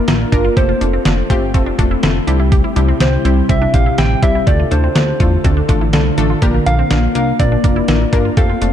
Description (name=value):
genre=synth-pop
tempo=123 BPM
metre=4/4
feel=straight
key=unclear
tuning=A4 = 443 Hz
part: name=soft struck synth lead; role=melody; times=0.0-8.7 s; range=Bb4 to G5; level=-21 LUFS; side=right 1 dB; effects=chorus, ping-pong delay
part: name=glassy FM pad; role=sustained chords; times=0.0-8.7 s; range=C3 to A4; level=-20 LUFS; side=left 1 dB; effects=ensemble chorus, built-in reverb
part: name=wide unison pluck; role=arpeggios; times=0.0-8.7 s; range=C4 to G4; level=-26 LUFS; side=right 2 dB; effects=ping-pong delay
part: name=analog pluck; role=accompaniment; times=0.1-8.7 s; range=G3 to Bb4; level=-20 LUFS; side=left 2 dB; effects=chorus
part: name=chorused synth bass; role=bass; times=0.1-8.7 s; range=E1 to E2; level=-16 LUFS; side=equal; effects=none
part: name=detuned 8-bit digital drum machine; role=drums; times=0.1-8.7 s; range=hi-hat, kick drum, snare drum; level=-16 LUFS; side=equal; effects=none
room=light reverb, digital ambience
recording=dark, warm production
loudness=-11 LUFS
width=side -10 dB against mid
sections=0.0-8.7 A section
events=none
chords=0.0 Bb; 0.6 F; 2.3 C; 4.5 Dm; 6.4 Bb